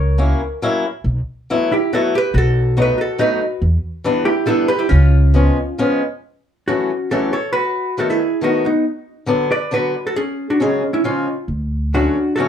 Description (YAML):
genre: musette waltz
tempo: 138 BPM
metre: 3/4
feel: straight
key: F# minor from 6.2 s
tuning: A4 = 441 Hz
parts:
  - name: hollow-body jazz guitar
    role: melody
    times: 0.0-12.5 s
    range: B3 to D5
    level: -18 LUFS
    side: equal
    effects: plate reverb
  - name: upright bass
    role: bass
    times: 0.0-5.5, 11.5-12.1 s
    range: B1 to E2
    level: -14 LUFS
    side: equal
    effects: none
  - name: fingerpicked swing-style acoustic guitar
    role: accompaniment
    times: 0.2-12.5 s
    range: C#3 to E4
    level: -19 LUFS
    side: left 2 dB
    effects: none
room: wet studio reverb, RT60 0.5 s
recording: heard from further back in the room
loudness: -15 LUFS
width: side -9 dB against mid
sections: 0.0-6.2 A section; 6.2-12.5 B section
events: none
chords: 0.0 F#7; 1.1 B7sus4; 2.3 B7; 3.6 Em7; 4.9 C#7; 6.2 F#m7; 7.5 B7; 8.8 Bm; 10.2 C#sus4; 11.0 C#; 11.5 Dmaj7